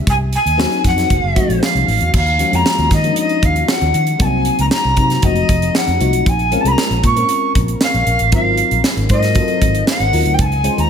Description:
polished 1980s jazz-funk pop; 116 BPM; 4/4; straight; A4 = 440 Hz
FM electric piano with soft pad layer; accompaniment; 0.0-10.9 s; F3 to C5; -20 LUFS; left 3 dB; analog chorus
breathy alto recorder; melody; 0.1-10.9 s; Eb5 to Db6; -17 LUFS; equal
vintage muted fingered electric bass; bass; 0.1-10.9 s; F1 to Eb3; -18 LUFS; equal
crisp fusion drum kit; drums; 0.1-10.9 s; crash cymbal, hi-hat, kick drum, snare drum; -18 LUFS; right 1 dB; gated reverb
light reverb, small room ambience; -12 LUFS; side -8 dB against mid
0.0-2.1 A section; 2.1-10.9 B section
0.1 Cm7b5; 1.1 F7b9; 2.1 Ebm11; 4.2 Cm7b5; 5.2 F7b9; 6.3 Bbm9; 8.3 Ab13; 10.4 Dbmaj9

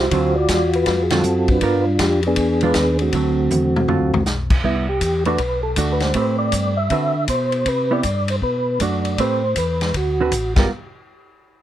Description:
soul jazz organ trio; 158 BPM; 4/4; swing 65% on 8ths; A4 = 441 Hz
percussive tonewheel organ; melody; 0.0-10.7 s; A3 to E5; -20 LUFS; equal; slow rotary speaker, chorus vibrato
mellow tonewheel organ; bass; 0.0-10.7 s; G1 to D3; -23 LUFS; left 1 dB; chorus vibrato, slow rotary speaker
hollow-body jazz guitar; accompaniment; 0.1-10.7 s; D3 to B4; -22 LUFS; right 4 dB
vintage drum kit; drums; 0.1-10.6 s; crash cymbal, hi-hat, kick drum, ride cymbal, snare drum, toms; -23 LUFS; left 1 dB
little or no reverb; -16 LUFS; side -12 dB against mid
0.0-4.6 A section; 4.6-10.7 B section
band accent 1.0; drum fill 3.5-4.3
0.1 D7#9; 1.6 G7#9; 2.4 E7b9; 3.1 D7#9; 4.6 Cmaj7; 5.4 Bm7; 6.2 Am9; 6.9 D13; 7.7 Cmaj7; 8.4 Bm7; 9.2 Am9; 9.9 D6; 10.5 G7#9; 10.7 N.C.

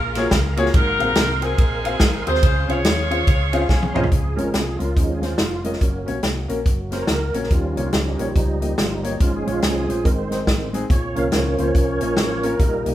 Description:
uptempo gospel; 142 BPM; 4/4; swing 62% on 8ths; Db major; A4 = 439 Hz
clear saxophone section; melody; 0.0-4.0 s; C4 to Db5; -23 LUFS; equal
bright tonewheel organ; sustained chords; 0.0-12.9 s; Eb3 to C6; -26 LUFS; right 1 dB; slow rotary speaker, chorus vibrato
hollow-body short-scale fingered electric bass; bass; 0.0-12.9 s; F1 to Eb2; -26 LUFS; equal
warm concert grand piano; accompaniment; 0.2-12.9 s; Ab2 to Bb5; -26 LUFS; left 2 dB
natural country drum kit; drums; 0.2-12.9 s; hi-hat, kick drum, ride cymbal, snare drum, toms; -20 LUFS; equal
warm French horn section; sustained chords; 4.1-12.9 s; Eb3 to G4; -33 LUFS; right 1 dB
moderate large studio reverb, RT60 1.2 s; band playing live in one room; -17 LUFS; side -13 dB against mid
0.0-4.1 A section; 4.1-12.9 B section
grand piano fill 3.3-4.1; drum fill 3.7-4.1; tonewheel organ solo 4.1-12.9
0.0 Gbmaj9; 0.7 Ab13; 2.4 Dbmaj7; 4.1 Db; 5.8 Gb; 7.5 Eb7; 9.2 Db/Ab; 10.1 Ab; 10.9 Bbm

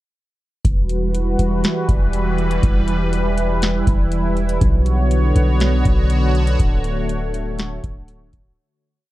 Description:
hip hop, atmospheric cloud-rap; 121 BPM; 4/4; half-time; E dorian; A4 = 444 Hz
sweeping resonant pad; sustained chords; 0.6-8.6 s; D3 to C#5; -21 LUFS; equal; chorus, sidechain pumping
long sustained 808-style bass; bass; 0.6-8.6 s; D1 to B1; -18 LUFS; equal
booming analog drum machine; drums; 0.6-8.5 s; hi-hat, kick drum, snare drum; -19 LUFS; equal
little or no reverb; dark, warm production; -16 LUFS; side -16 dB against mid
0.6-8.6 verse
fade-out 6.6-8.6
0.6 Emadd9; 4.6 Bmadd9; 6.6 Dmaj7

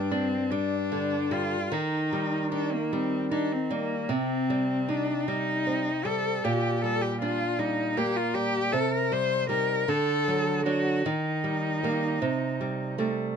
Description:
romantic duo for cello and classical guitar; 51 BPM (dotted quarters); 6/8; rubato; G minor; A4 = 440 Hz
rich cello; melody; 0.0-13.0 s; Bb3 to C5; -28 LUFS; left 4 dB
nylon-string guitar; accompaniment; 0.0-13.4 s; G2 to Eb4; -28 LUFS; right 3 dB
light reverb; close, detailed microphones; -25 LUFS; side -7 dB against mid
0.0-13.4 A section
0.0 G5; 1.7 Eb; 4.1 Cm; 6.4 Gm/Bb; 8.7 Cm7; 9.9 D; 11.1 Eb; 12.2 Am7b5/C

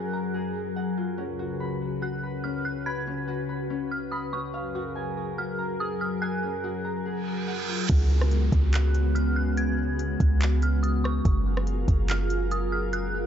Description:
hip hop, atmospheric cloud-rap; 143 BPM; 4/4; half-time; F# major; A4 = 442 Hz
dark detuned synth bell; melody; 0.0-13.3 s; C#6 to G#6; -35 LUFS; right 2 dB; chorus, low-pass filter, tape echo
glassy FM pad; sustained chords; 0.0-13.3 s; C#2 to B4; -30 LUFS; left 2 dB; ensemble chorus, built-in reverb, sidechain pumping
Celtic harp; arpeggios; 0.0-10.2 s; C#4 to B5; -36 LUFS; left 1 dB; low-pass filter, tape echo
reverse cymbal and downlifter; sound effects; 7.2-11.3 s; -36 LUFS; right 4 dB
clean 808-style bass; bass; 7.9-13.3 s; F#1 to C#2; -24 LUFS; equal
smooth R&B drum kit; drums; 7.9-13.0 s; crash cymbal, handclaps, hi-hat, kick drum, rim click; -26 LUFS; equal
little or no reverb; dark, warm production, nothing above 7.6 kHz; -24 LUFS; side -9 dB against mid
0.0-7.9 A section; 7.9-13.3 B section
reverse cymbal 7.2-7.9
0.0 F#maj9; 1.2 C#7sus4; 4.5 F#maj9; 7.9 C#7sus4; 11.3 F#maj9

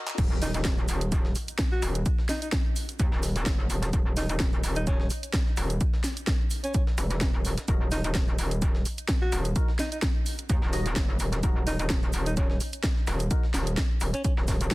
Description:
bass house; 128 BPM; 4/4; swing 54% on 16ths; Eb phrygian; A4 = 440 Hz
percussive organ stab; stabs; 0.0-0.2, 7.7-13.4 s; Eb4 to Eb5; -41 LUFS; left 2 dB; lush chorus, cassette tape, sidechain pumping, dub echo
swell and impact; sound effects; 0.3-2.1 s; -39 LUFS; equal
garage drum kit; drums; 0.1-14.7 s; crash cymbal, handclaps, hi-hat, snare drum; -33 LUFS; equal; overdrive
metallic wobble bass; bass; 0.2-14.7 s; Eb1 to Eb2; -28 LUFS; equal; distortion, chorus, overdrive, sidechain pumping
breakbeat sampler-style drum kit; drums; 0.2-14.7 s; hi-hat, shaker, snare drum; -43 LUFS; right 2 dB
electronic kick drum; drums; 0.2-14.7 s; -26 LUFS; equal; high-pass filter on kick
tube shaker; percussion; 0.2-14.7 s; -43 LUFS; right 2 dB
warm alto saxophone; melody; 0.4-14.3 s; Db4 to Gb4; -35 LUFS; equal; dub echo
digital ambience; dense, heavily limited modern master, high-pass filter; -24 LUFS; side -20 dB against mid
0.2-14.7 A section
break 0.0; drum fill 0.0; drop 0.2-14.7; impact 0.2-2.1
0.2 Ebm

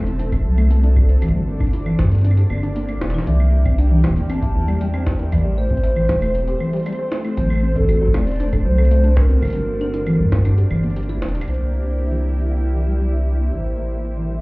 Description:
IDM; 117 BPM; 4/4; straight; G melodic minor; A4 = 438 Hz
granular cloud pad; sustained chords; 0.0-14.4 s; A3 to D5; -28 LUFS; right 1 dB; built-in reverb, sidechain pumping
rubbery square bass; bass; 0.0-14.4 s; E1 to G2; -18 LUFS; equal
warbly dusty pluck; arpeggios; 0.1-14.3 s; E3 to A4; -24 LUFS; left 1 dB; chorus, digital delay
jungle sampler-style drum kit; drums; 0.1-11.6 s; claves, hi-hat, snare drum; -32 LUFS; equal; small room ambience, digital delay
electronic kick drum; drums; 0.3-10.4 s; -20 LUFS; equal; small room ambience
warbly nostalgic lead; melody; 3.3-14.4 s; A4 to A5; -27 LUFS; equal; wide subtle chorus, digital delay
bubbling stepped-filter texture; texture; 11.8-14.4 s; E5; -40 LUFS; right 2 dB; chorus, built-in reverb
light reverb, digital ambience; heard muffled through a wall, club reverb, EQ; -16 LUFS; side -24 dB against mid
0.0-11.5 A section; 11.5-14.4 B section
drum fill 11.2; filter sweep on synth arpeggio sound 11.5-14.4
0.0 D7; 1.2 Gm6; 3.3 C9; 5.3 Am7; 7.4 D7; 9.4 Gm6; 11.5 C9; 13.5 Am7

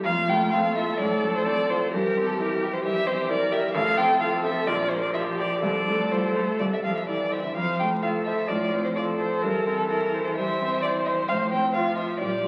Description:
quick classical-period movement for piano quartet; 129 BPM; 4/4; rubato; F major; A4 = 435 Hz
warm violin; melody; 0.0-12.5 s; A4 to G5; -28 LUFS; equal
clear baby grand piano; accompaniment; 0.0-12.5 s; A1 to C5; -31 LUFS; equal
clear cello; second line; 0.1-12.5 s; D3 to A3; -37 LUFS; equal
warm viola; accompaniment; 0.1-12.5 s; F4 to C5; -31 LUFS; equal
wet recital hall reverb, RT60 1.3 s; very old 78 rpm record, vinyl crackle; -25 LUFS; mono
0.1-12.5 A section
0.1 F; 1.0 F/A; 1.9 C7/G; 3.8 F/A; 4.7 Gm7/Bb; 5.6 F/C; 6.6 C; 7.6 F; 8.5 F/A; 9.4 C/G; 11.3 F/A

